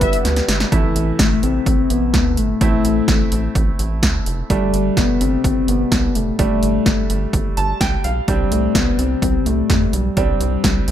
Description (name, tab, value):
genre	synth-pop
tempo	127 BPM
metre	4/4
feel	straight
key	unclear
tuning	A4 = 436 Hz
part	soft octave-layered synth lead	melody	0.0-10.9 s	E3 to B4	-20 LUFS	left 5 dB	chorus, ping-pong delay
part	bright grand piano	accompaniment	0.0-10.9 s	C3 to A5	-24 LUFS	right 5 dB	none
part	sweeping resonant pad	sustained chords	0.0-0.7 s	D3 to G4	-32 LUFS	right 1 dB	none
part	rubbery square bass	bass	0.0-10.9 s	F1 to F2	-21 LUFS	right 1 dB	none
part	punchy analog drum machine	drums	0.0-10.9 s	hi-hat, kick drum, snare drum	-18 LUFS	right 1 dB	overdrive
room	light reverb, digital ambience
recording	none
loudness	-15 LUFS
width	side -10 dB against mid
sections	0.7-10.9 A section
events	drum fill 0.2-0.7; grand piano fill 7.3-8.3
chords	0.0 G; 0.7 Am; 4.5 Gsus2; 8.3 Csus2